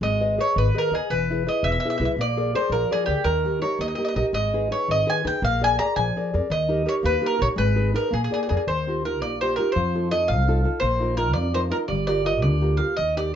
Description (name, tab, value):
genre	italian folk, Italian serenade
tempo	111 BPM (dotted quarters)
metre	6/8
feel	straight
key	G# harmonic minor, Eb major from 8.7 s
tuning	A4 = 442 Hz
part	bowl-back mandolin	melody	0.0-13.3 s	G4 to A#5	-24 LUFS	equal	none
part	nylon-string guitar	accompaniment	0.0-13.3 s	B2 to D#5	-26 LUFS	left 1 dB	none
part	upright bass	bass	0.0-13.4 s	E1 to E#2	-25 LUFS	equal	none
room	wet studio ambience, RT60 0.5 s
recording	nothing above 7.6 kHz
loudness	-20 LUFS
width	side -9 dB against mid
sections	0.0-8.7 A section; 8.7-13.4 B section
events	none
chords	0.0 G#m; 1.1 E; 2.2 A#7; 3.3 D#; 4.3 G#m; 5.4 A#7; 6.5 D#; 7.6 G#m; 8.1 A#7; 8.7 Ebadd9; 9.8 F7; 10.8 Bbsus4; 11.9 Gm7